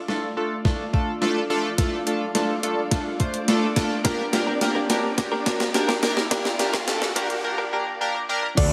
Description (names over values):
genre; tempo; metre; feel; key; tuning
dance-pop; 106 BPM; 4/4; straight; unclear; A4 = 441 Hz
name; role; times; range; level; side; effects
ensemble organ-string; sustained chords; 0.0-8.7 s; D3 to D5; -34 LUFS; equal; ensemble chorus, sidechain pumping
riser and downlifter; sound effects; 1.2-8.7 s; none; -37 LUFS; equal; none
chorused polysynth; accompaniment; 0.1-8.7 s; A3 to D5; -27 LUFS; equal; sidechain pumping
gated 80s digital drum machine; drums; 0.1-8.7 s; crash cymbal, hi-hat, kick drum, snare drum; -26 LUFS; equal; gated reverb, gated reverb snare
direct-recorded clean electric guitar; riff; 4.0-8.7 s; A3 to Bb4; -33 LUFS; equal; subtle chorus
mallet-like synth pluck; melody; 8.6-8.7 s; D5; -26 LUFS; equal; chorus
fat analog bass; bass; 8.6-8.7 s; D2; -25 LUFS; equal; sidechain pumping
room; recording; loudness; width
light reverb; high-pass filter; -24 LUFS; mono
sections
0.0-8.6 A section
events
build-up 0.0-8.6; drum fill 0.0-7.4; filter sweep 0.0-8.6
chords
0.0 Dm; 4.0 Gm